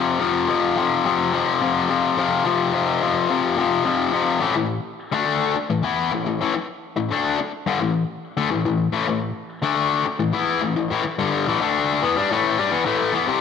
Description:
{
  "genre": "rock",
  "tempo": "107 BPM",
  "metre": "4/4",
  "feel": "straight",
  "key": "unclear",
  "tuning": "A4 = 440 Hz",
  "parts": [
    { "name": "distorted electric guitar", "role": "solo", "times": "0.0-13.4 s", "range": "F2 to E4", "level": "-19 LUFS", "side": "left 5 dB", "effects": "overdrive, slapback echo" }
  ],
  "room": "moderate plate reverb, RT60 2.7 s",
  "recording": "none",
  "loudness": "-19 LUFS",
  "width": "side -6 dB against mid",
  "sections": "0.0-4.4 A section; 4.4-13.4 B section",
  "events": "none",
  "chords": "0.0 F5; 4.4 A5"
}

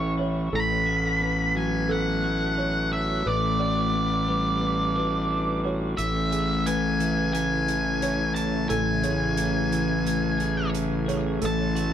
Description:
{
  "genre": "post-rock",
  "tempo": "88 BPM",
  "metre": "4/4",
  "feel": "straight",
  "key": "A major",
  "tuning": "A4 = 439 Hz",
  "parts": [
    { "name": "octave-fuzz lead guitar", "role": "melody", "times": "0.0-11.9 s", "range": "C#5 to B5", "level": "-27 LUFS", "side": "equal", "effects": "distortion, tape echo" },
    { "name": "felt-muted upright piano", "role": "arpeggios", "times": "0.0-11.9 s", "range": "A4 to D5", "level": "-35 LUFS", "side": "right 2 dB", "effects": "tape echo" },
    { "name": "twelve-string electric guitar", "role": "arpeggios", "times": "0.0-11.9 s", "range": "A2 to G#4", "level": "-31 LUFS", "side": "left 3 dB", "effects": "analog chorus, tape echo" },
    { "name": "fuzz fingered electric bass", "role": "bass", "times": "0.0-11.9 s", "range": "A1", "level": "-26 LUFS", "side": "equal", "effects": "overdrive" },
    { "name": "ethereal airy pad", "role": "sustained chords", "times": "6.4-11.9 s", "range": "C#3 to F#4", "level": "-33 LUFS", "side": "equal", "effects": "ensemble chorus, built-in reverb" },
    { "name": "hi-hat", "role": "drums", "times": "6.0-11.9 s", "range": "none", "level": "-41 LUFS", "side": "right 5 dB", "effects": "none" }
  ],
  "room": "little or no reverb",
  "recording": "dark, warm production",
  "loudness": "-22 LUFS",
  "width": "side -10 dB against mid",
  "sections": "0.0-11.9 A section",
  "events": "none",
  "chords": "0.0 A; 0.5 B5/A; 3.3 Gmaj7/A; 6.0 Amaj7; 11.4 B7/A"
}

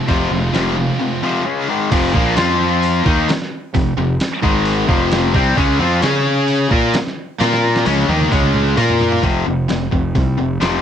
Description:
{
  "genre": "hard rock",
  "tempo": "131 BPM",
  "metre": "4/4",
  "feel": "straight",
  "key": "F minor",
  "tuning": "A4 = 440 Hz",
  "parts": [
    { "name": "high-gain distorted guitar", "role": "riff", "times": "0.0-9.2 s", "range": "F2 to Db5", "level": "-22 LUFS", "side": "right 2 dB", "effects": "distortion, cassette tape" },
    { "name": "overdriven semi-hollow guitar", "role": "riff", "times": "0.0-10.8 s", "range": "F2 to Db5", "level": "-18 LUFS", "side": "left 9 dB", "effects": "cassette tape" },
    { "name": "tight distorted guitar", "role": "riff", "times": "0.0-10.8 s", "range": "F2 to Db5", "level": "-22 LUFS", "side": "right 9 dB", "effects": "distortion, cassette tape" },
    { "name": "fuzz fingered electric bass", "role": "bass", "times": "0.1-10.8 s", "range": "F1 to Db3", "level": "-20 LUFS", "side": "right 1 dB", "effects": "overdrive" },
    { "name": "dusty soul sampler-style drum kit", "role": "drums", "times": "0.1-10.7 s", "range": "crash cymbal, hi-hat, kick drum, snare drum, toms", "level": "-20 LUFS", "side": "right 1 dB", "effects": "cassette tape" }
  ],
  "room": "light reverb",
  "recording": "home recording on cassette",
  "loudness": "-14 LUFS",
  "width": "side -9 dB against mid",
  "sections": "0.0-1.9 A section; 1.9-9.2 B section; 9.2-10.8 C section",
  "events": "break 1.0-1.9; drum fill 7.4-9.2",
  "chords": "0.0 Fm; 1.5 Db5; 1.7 Ab5; 1.9 F5; 4.4 Ab5; 4.9 F5; 5.6 Db5; 7.4 Bb5; 7.9 Db5; 8.8 Bb5; 9.2 F5"
}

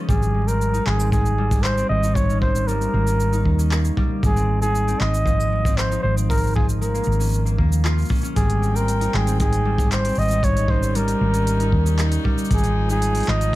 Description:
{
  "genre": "folktronica",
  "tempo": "116 BPM",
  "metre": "4/4",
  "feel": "straight",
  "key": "Ab major",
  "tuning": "A4 = 442 Hz",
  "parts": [
    { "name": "rich string quartet", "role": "sustained chords", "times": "0.0-0.1, 8.4-13.6 s", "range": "F3 to G5", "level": "-32 LUFS", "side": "left 1 dB", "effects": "none" },
    { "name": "concert harp", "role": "arpeggios", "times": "0.0-13.6 s", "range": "F3 to F4", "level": "-26 LUFS", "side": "left 1 dB", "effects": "none" },
    { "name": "breathy flugelhorn", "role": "melody", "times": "0.1-13.6 s", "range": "Ab4 to Eb5", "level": "-24 LUFS", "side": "equal", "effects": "digital delay" },
    { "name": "hollow-body short-scale fingered electric bass", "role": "bass", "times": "0.1-13.6 s", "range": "Ab1 to Eb2", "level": "-20 LUFS", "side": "equal", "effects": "none" },
    { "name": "kick drum", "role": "drums", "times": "0.1-13.6 s", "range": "none", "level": "-22 LUFS", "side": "equal", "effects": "none" },
    { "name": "organic electronic drum kit", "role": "drums", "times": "0.1-13.5 s", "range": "cabasa, handclaps, hi-hat", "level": "-31 LUFS", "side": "equal", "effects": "overdrive" }
  ],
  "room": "studio ambience",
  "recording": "dark, warm production, vinyl crackle",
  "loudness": "-17 LUFS",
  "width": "side -17 dB against mid",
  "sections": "0.1-13.6 A section",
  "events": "none",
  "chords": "0.1 Abmaj7; 2.2 Eb7/Ab; 4.2 Fm7/Ab; 8.4 Abmaj7; 10.4 Eb7/Ab; 12.5 Fm7/Ab"
}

